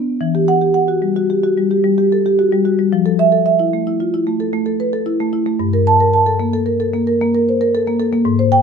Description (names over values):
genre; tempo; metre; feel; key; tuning
classical, contemporary piece for solo marimba; 112 BPM; 5/4; rubato; unclear; A4 = 440 Hz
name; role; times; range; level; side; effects
marimba with soft mallets; solo; 0.0-8.6 s; G2 to A5; -13 LUFS; equal; none
room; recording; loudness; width
moderate stone room reverb, RT60 1.1 s; none; -13 LUFS; side -6 dB against mid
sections
0.2-8.6 A section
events
none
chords
0.2 Emadd9; 2.9 Fmaj7; 5.6 Gmadd9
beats
| 0.20 0.75 1.30 1.84 2.38 | 2.92 3.46 4.00 4.53 5.07 | 5.61 6.14 6.66 7.20 7.74 | 8.27